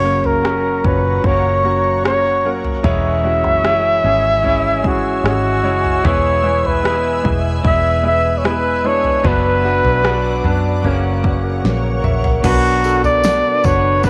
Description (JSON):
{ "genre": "pop ballad", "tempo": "75 BPM", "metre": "4/4", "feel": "straight", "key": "B minor", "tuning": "A4 = 440 Hz", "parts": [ { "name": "breathy flugelhorn", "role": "melody", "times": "0.0-14.1 s", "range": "F#4 to E5", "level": "-18 LUFS", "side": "equal", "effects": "slapback echo" }, { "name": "warm concert grand piano", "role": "accompaniment", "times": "0.0-14.1 s", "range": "A#2 to F#5", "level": "-24 LUFS", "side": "equal", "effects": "none" }, { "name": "granular cloud pad", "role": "sustained chords", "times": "0.0-14.1 s", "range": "D4 to E6", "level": "-28 LUFS", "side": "equal", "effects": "built-in reverb" }, { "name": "electric guitar at the edge of break-up", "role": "arpeggios", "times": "0.0-14.1 s", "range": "F#2 to A#4", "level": "-29 LUFS", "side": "equal", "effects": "spring reverb" }, { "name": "vintage muted fingered electric bass", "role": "bass", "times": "0.0-14.1 s", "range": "E1 to F#2", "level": "-22 LUFS", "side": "equal", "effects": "none" }, { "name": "pop drum kit", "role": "drums", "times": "0.2-14.1 s", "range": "crash cymbal, kick drum, rim click, snare drum, toms", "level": "-23 LUFS", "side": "equal", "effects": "overdrive" }, { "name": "tambourine", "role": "percussion", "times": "12.4-14.1 s", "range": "none", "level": "-38 LUFS", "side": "equal", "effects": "none" } ], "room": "light reverb", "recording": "none", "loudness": "-16 LUFS", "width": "mono", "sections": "0.0-12.4 A section; 12.4-14.1 B section", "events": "drum fill 11.6-12.4", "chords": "0.0 F#; 2.8 C#m/E; 6.0 E; 9.2 Bm/F#; 10.8 F#; 12.4 Bm" }